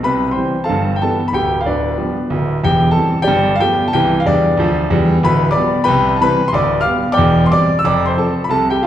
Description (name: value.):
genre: jazz, stride piano.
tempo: 184 BPM.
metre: 4/4.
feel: swing 63% on 8ths.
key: C major.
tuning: A4 = 440 Hz.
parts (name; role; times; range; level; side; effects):
clear concert grand piano; solo; 0.0-8.9 s; D1 to F6; -13 LUFS; equal; none.
room: wet recital hall reverb, RT60 1.9 s.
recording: recorded in a church or concert hall.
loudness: -13 LUFS.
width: side -11 dB against mid.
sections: 0.0-8.9 A section.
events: none.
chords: 0.0 C; 0.7 G13; 1.3 G7/D; 2.6 C/E; 3.3 G9; 3.9 C; 5.2 G7/D; 5.9 C; 6.5 G7/D; 7.2 C/E; 7.8 F.